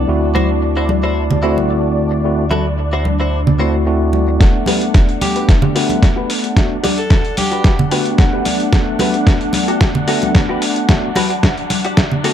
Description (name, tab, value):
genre	nu-disco, nu disco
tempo	111 BPM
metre	4/4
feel	straight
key	G major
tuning	A4 = 440 Hz
part	tine electric piano	accompaniment	0.0-12.3 s	A3 to F#5	-19 LUFS	equal	medium stereo tremolo, sidechain pumping, low-pass filter, tape echo
part	lush unison pad	sustained chords	0.0-12.3 s	D4 to F#5	-23 LUFS	equal	chorus, phaser, sidechain pumping
part	direct-recorded clean electric guitar	riff	0.0-12.3 s	E4 to G5	-23 LUFS	left 1 dB	lush chorus, low-pass filter, tape echo
part	fat analog bass	bass	0.0-4.4 s	D2	-18 LUFS	equal	none
part	congas	percussion	0.4-12.2 s	none	-20 LUFS	equal	none
part	dusty soul sampler-style drum kit	drums	4.4-12.3 s	hi-hat, snare drum	-19 LUFS	equal	overdrive
part	electronic kick drum	drums	4.4-12.1 s	none	-12 LUFS	equal	overdrive
part	clear tenor saxophone	melody	5.2-7.8 s	G4 to A4	-25 LUFS	equal	ping-pong delay
room	light reverb, digital ambience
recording	dark, warm production, high-pass filter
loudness	-12 LUFS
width	side -10 dB against mid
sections	0.0-4.4 A section; 4.4-12.3 B section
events	build-up 4.4-12.3; drum fill 4.4-12.3; filter sweep on clean electric guitar 4.4-12.3; filter sweep 4.4-12.3; clean electric guitar fill 7.7-8.7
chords	0.1 D9; 4.4 Gmaj7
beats	| 0.08 0.62 1.17 1.71 | 2.25 2.79 3.33 3.87 | 4.41 4.95 5.49 6.03 | 6.57 7.11 7.65 8.19 | 8.73 9.27 9.81 10.36 | 10.89 11.44 11.98